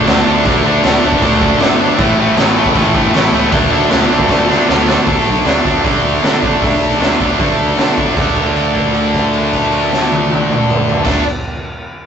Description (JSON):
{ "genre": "punk rock", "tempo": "155 BPM", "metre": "4/4", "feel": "straight", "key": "unclear", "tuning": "A4 = 440 Hz", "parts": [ { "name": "fuzz guitar", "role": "riff", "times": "0.0-5.1 s", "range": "A2 to D4", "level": "-19 LUFS", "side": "left 1 dB", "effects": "distortion" }, { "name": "tight distorted guitar", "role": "riff", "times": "0.0-11.2 s", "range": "A2 to D4", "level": "-16 LUFS", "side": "left 6 dB", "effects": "distortion" }, { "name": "tight distorted guitar", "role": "riff", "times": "0.0-11.2 s", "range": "A2 to D4", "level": "-16 LUFS", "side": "right 6 dB", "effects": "distortion" }, { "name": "fuzz picked electric bass", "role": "bass", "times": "0.1-11.2 s", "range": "G1 to D3", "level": "-20 LUFS", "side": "equal", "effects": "overdrive" }, { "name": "raw garage drum kit", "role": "drums", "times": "0.1-11.1 s", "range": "crash cymbal, hi-hat, kick drum, snare drum, toms", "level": "-16 LUFS", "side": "equal", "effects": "none" } ], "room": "light reverb", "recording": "rough rehearsal-room recording, tube saturation, nothing above 7.9 kHz", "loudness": "-10 LUFS", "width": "side -8 dB against mid", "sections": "0.0-5.1 A section; 5.1-8.2 B section; 8.2-11.3 C section", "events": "drum fill 4.3-5.1; held note 8.2-11.1", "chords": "0.0 D5; 2.0 A5; 3.5 D5" }